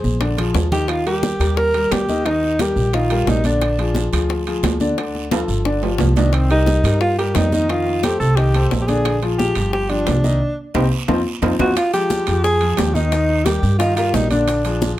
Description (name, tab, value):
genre	Afro-Cuban jazz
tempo	177 BPM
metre	4/4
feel	straight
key	Bb mixolydian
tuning	A4 = 441 Hz
part	warm concert grand piano	accompaniment	0.0-14.9 s	D3 to Eb5	-23 LUFS	left 2 dB	none
part	upright bass	bass	0.0-14.9 s	G1 to G2	-20 LUFS	equal	none
part	congas	percussion	0.0-15.0 s	none	-26 LUFS	equal	none
part	guiro	percussion	0.0-15.0 s	none	-35 LUFS	right 8 dB	none
part	bongos	percussion	0.2-15.0 s	none	-27 LUFS	left 6 dB	none
part	timbales	percussion	0.2-15.0 s	none	-27 LUFS	right 7 dB	none
part	warm alto saxophone	melody	0.7-4.1, 6.2-14.9 s	C4 to Bb4	-20 LUFS	equal	plate reverb
part	maracas	percussion	11.8-15.0 s	none	-38 LUFS	left 4 dB	none
room	moderate club reverb, RT60 0.5 s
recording	none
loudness	-15 LUFS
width	side -14 dB against mid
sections	0.0-11.8 A section; 11.8-15.0 A section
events	drum fill 0.0-0.9, 5.3-6.3, 11.1-11.8; band accent 10.4-11.8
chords	0.2 Bb7; 0.9 Eb; 3.6 Bb7; 5.0 Dm; 5.7 G5; 6.3 Cm7; 7.7 F13; 9.1 Bb6; 9.7 G5; 10.4 Cm; 11.1 F5; 11.8 Fm9; 13.1 Eb; 14.5 Bb7